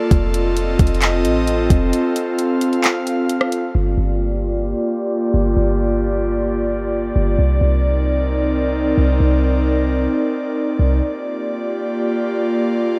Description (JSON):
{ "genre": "hip hop, atmospheric cloud-rap", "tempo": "132 BPM", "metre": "4/4", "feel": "half-time", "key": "G minor", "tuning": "A4 = 440 Hz", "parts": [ { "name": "airy breathy pad", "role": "sustained chords", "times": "0.0-13.0 s", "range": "Bb3 to F5", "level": "-21 LUFS", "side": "equal", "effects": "chorus, sidechain pumping, low-pass filter" }, { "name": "warm 808-style bass", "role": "bass", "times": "0.1-11.0 s", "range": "F1 to C2", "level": "-21 LUFS", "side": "equal", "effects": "none" }, { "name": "smooth R&B drum kit", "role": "drums", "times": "0.1-3.6 s", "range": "handclaps, hi-hat, kick drum, rim click", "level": "-20 LUFS", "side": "equal", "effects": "none" } ], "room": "light reverb", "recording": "none", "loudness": "-18 LUFS", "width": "mono", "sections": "0.0-3.7 A section; 3.7-11.0 B section; 11.0-13.0 A section", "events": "break 1.9-3.7; filter sweep on analog synth pad 3.7-11.0", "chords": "0.1 F7; 3.7 Gm7; 7.4 Cm9; 11.0 Gm7" }